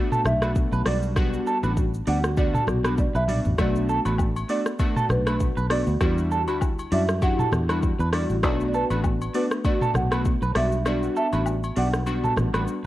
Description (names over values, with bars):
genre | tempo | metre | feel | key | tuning
afrobeats | 99 BPM | 4/4 | swing 55% on 16ths | B minor | A4 = 441 Hz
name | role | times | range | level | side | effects
marimba with medium mallets | melody | 0.0-12.3 s | B4 to F#5 | -30 LUFS | right 2 dB | cassette tape
glassy digital keys | accompaniment | 0.0-12.8 s | G3 to G4 | -27 LUFS | left 1 dB | chorus, cassette tape
electric guitar through a small old amp | riff | 0.1-12.6 s | A4 to D5 | -30 LUFS | right 4 dB | cassette tape, tape echo
afro-pop drum kit | drums | 0.1-12.8 s | hi-hat, kick drum, rim click, shaker, toms | -26 LUFS | equal | none
fingered electric bass | bass | 0.3-12.7 s | A1 to F#2 | -25 LUFS | equal | none
agogo bells and woodblock | percussion | 3.6-12.7 s | none | -37 LUFS | left 6 dB | none
room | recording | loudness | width
little or no reverb | home recording on cassette | -21 LUFS | side -15 dB against mid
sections
0.0-12.9 A section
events
drum fill 3.0-3.6; kick muted 10.9-12.9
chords
0.0 Bm7; 0.9 Gmaj7; 3.6 Bm7; 6.0 Em9; 8.4 Bm7; 10.6 Gmaj7